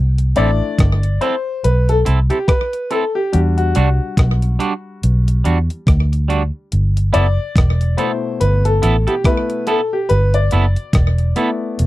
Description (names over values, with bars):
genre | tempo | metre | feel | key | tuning
lovers rock reggae | 71 BPM | 4/4 | swing 58% on 16ths | unclear | A4 = 439 Hz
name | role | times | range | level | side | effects
vintage muted fingered electric bass | bass | 0.0-11.9 s | E1 to E2 | -14 LUFS | equal | none
detuned 8-bit digital drum machine | drums | 0.2-11.9 s | hi-hat, kick drum, rim click | -17 LUFS | equal | slapback echo
clear baby grand piano | accompaniment | 0.4-11.9 s | B2 to D5 | -19 LUFS | left 3 dB | none
twangy electric guitar | stabs | 0.4-11.5 s | G3 to A4 | -19 LUFS | right 5 dB | none
room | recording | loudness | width
little or no reverb | dry, close 1970s-style studio recording | -14 LUFS | side -16 dB against mid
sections
0.0-11.9 A section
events
grand piano solo 0.0-11.9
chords
0.0 C6; 3.3 Em9; 6.7 G69